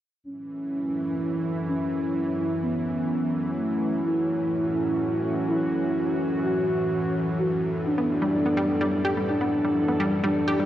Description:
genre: techno.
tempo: 126 BPM.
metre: 4/4.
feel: straight.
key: F# minor.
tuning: A4 = 440 Hz.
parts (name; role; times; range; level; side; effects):
expressive synth lead; melody; 0.2-10.7 s; A3 to F#4; -26 LUFS; equal; chorus, tape echo.
evolving wavetable pad; sustained chords; 0.5-10.7 s; A2 to D5; -28 LUFS; right 1 dB; chorus, built-in reverb.
bowed-like drone; drone; 0.6-10.7 s; F#2 to E3; -32 LUFS; equal; built-in reverb.
wide unison pluck; arpeggios; 8.0-10.7 s; G3 to G4; -27 LUFS; equal; analog delay.
room: moderate lush hall reverb, RT60 2.4 s.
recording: dry, gritty hardware recording, cassette tape.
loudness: -23 LUFS.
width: side -12 dB against mid.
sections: 0.2-10.7 A section.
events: filter sweep on analog synth lead 0.2-10.7; filter sweep on ambient pad 0.2-10.7.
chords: 0.2 F#m7; 7.9 Gadd9/F#.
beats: | 0.24 0.71 1.19 1.67 | 2.14 2.62 3.10 3.57 | 4.05 4.52 5.00 5.48 | 5.95 6.43 6.91 7.38 | 7.86 8.33 8.81 9.29 | 9.76 10.24.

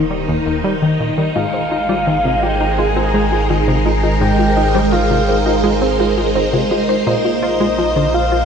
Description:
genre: ambient, sequencer-driven space music.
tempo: 84 BPM.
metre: 4/4.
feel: straight.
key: unclear.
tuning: A4 = 441 Hz.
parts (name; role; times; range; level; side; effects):
phased string machine; sustained chords; 0.0-8.4 s; Eb3 to C5; -18 LUFS; right 1 dB; ensemble chorus, phaser.
tight sequenced synth; riff; 0.0-8.4 s; Eb2 to F4; -20 LUFS; left 1 dB; chorus, ping-pong delay.
round analog bass; bass; 0.0-8.4 s; Eb1 to Bb1; -21 LUFS; equal; none.
bubbling stepped-filter texture; texture; 0.0-8.4 s; C5; -32 LUFS; right 5 dB; none.
soft octave-layered synth lead; melody; 1.4-8.4 s; Eb5 to Ab5; -20 LUFS; equal; chorus, ping-pong delay.
soft round pluck; arpeggios; 1.4-8.4 s; F4 to C5; -23 LUFS; moving between left 7 dB and right 1 dB; chorus, auto-pan, ping-pong delay.
room: wet cathedral reverb, RT60 5.2 s.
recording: in a vast, echoing space.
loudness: -13 LUFS.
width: side -7 dB against mid.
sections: 0.0-8.4 A section.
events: none.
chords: 0.0 Eb; 1.4 Ab; 7.1 Bb5.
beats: 0.64 | 1.35 2.07 2.78 3.50 | 4.21 4.93 5.64 6.36 | 7.07 7.78.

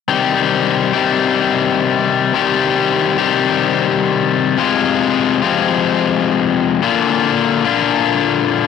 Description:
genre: rock.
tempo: 107 BPM.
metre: 4/4.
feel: straight.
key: C minor.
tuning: A4 = 436 Hz.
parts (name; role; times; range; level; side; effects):
cranked stack guitar; riff; 0.1-8.7 s; F2 to G4; -13 LUFS; left 8 dB; overdrive.
room: light reverb, digital ambience.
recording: none.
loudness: -13 LUFS.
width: side -6 dB against mid.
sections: 0.1-8.7 A section.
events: none.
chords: 0.1 Cm; 4.6 Fm; 6.8 Bb.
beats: | 0.09 0.65 1.21 1.77 | 2.33 2.90 3.46 4.02 | 4.58 5.14 5.70 6.26 | 6.82 7.38 7.93 8.49.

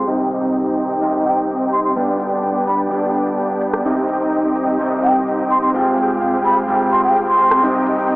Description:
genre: EDM, festival progressive house.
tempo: 127 BPM.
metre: 4/4.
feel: straight.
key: C harmonic minor.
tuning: A4 = 440 Hz.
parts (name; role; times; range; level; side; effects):
bright wooden flute; melody; 0.0-7.6 s; G5 to C6; -19 LUFS; equal; vintage 12-bit sampler grit, digital delay.
electric guitar through a small old amp; accompaniment; 0.0-8.2 s; G2 to G5; -22 LUFS; right 1 dB; digital delay.
rich symphonic string section; sustained chords; 0.0-8.2 s; B2 to G5; -26 LUFS; equal; none.
dense compressed supersaw; riff; 0.0-8.2 s; B3 to G5; -18 LUFS; equal; cassette tape, low-pass filter, digital delay.
saturated sub bass; bass; 0.0-8.2 s; G1 to F2; -44 LUFS; equal; none.
big-room dance drum kit; drums; 0.1-8.2 s; hi-hat, rim click, shaker; -28 LUFS; equal; overdrive, studio reverb.
room: moderate huge ambient reverb, RT60 6.7 s.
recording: low-pass filter, small speaker sound.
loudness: -15 LUFS.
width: side -22 dB against mid.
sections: 0.0-8.2 A section.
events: filter sweep on supersaw synth 0.0-8.2; filter sweep 0.0-8.2.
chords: 0.1 Cm; 2.0 G; 3.9 Cm; 5.7 Fmadd9; 7.6 Cm.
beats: | 0.07 0.55 1.02 1.49 | 1.96 2.44 2.91 3.38 | 3.85 4.32 4.80 5.27 | 5.74 6.21 6.69 7.16 | 7.63 8.10.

